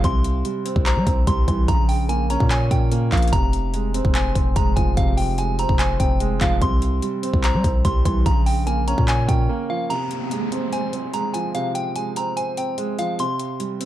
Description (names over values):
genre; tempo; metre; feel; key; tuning
hip hop, trap; 146 BPM; 4/4; half-time; F minor; A4 = 440 Hz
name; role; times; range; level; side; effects
delicate synth tine bell; melody; 0.0-13.9 s; F5 to C6; -26 LUFS; equal; chorus, low-pass filter, tape echo
felt-muted upright piano; accompaniment; 0.0-13.9 s; C3 to Db5; -25 LUFS; right 3 dB; low-pass filter
long sustained 808-style bass; bass; 0.0-9.5 s; F1 to G3; -22 LUFS; equal; none
big-room dance drum kit; drums; 0.0-13.9 s; handclaps, hi-hat, kick drum; -21 LUFS; equal; none
downlifter; sound effects; 9.9-13.2 s; none; -31 LUFS; right 3 dB; none
room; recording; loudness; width
digital ambience; dark, warm production; -18 LUFS; side -13 dB against mid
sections
0.0-9.9 A section; 9.9-13.9 B section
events
break 9.5-9.9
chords
0.0 C; 1.7 Bbm; 3.3 Fm; 6.6 C; 8.3 Bbm; 9.9 Fm; 13.2 C5